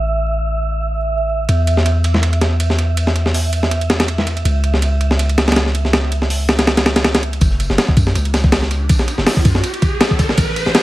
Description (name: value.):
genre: drum and bass, jungle.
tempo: 162 BPM.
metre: 4/4.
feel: swing 54% on 16ths.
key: F# minor.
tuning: A4 = 441 Hz.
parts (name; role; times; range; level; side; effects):
long sustained 808-style bass; bass; 0.0-10.7 s; F#1 to F#2; -17 LUFS; equal; tube saturation.
wind-like tuned noise texture; texture; 0.0-7.4 s; E5; -25 LUFS; right 4 dB; built-in reverb.
breakbeat sampler-style drum kit; drums; 1.5-10.8 s; hi-hat, kick drum, ride cymbal, snare drum; -16 LUFS; equal; none.
crunchy breakbeat drum kit; drums; 7.4-10.8 s; hi-hat, snare drum, tambourine; -30 LUFS; left 2 dB; high-pass filter on hats, high-pass filter on snare, high-pass filter on perc, high-pass filter on room.
riser; sound effects; 8.5-10.8 s; none; -24 LUFS; equal; none.
room: light reverb, small room ambience.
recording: vinyl crackle, high-pass filter.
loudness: -13 LUFS.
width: side -16 dB against mid.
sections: 0.0-7.4 A section; 7.4-10.8 B section.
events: build-up 7.4-10.8; filter sweep 7.4-10.8; riser 8.5-10.8.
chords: 0.0 A5; 1.5 N.C.; 4.5 C#m; 7.4 F#5.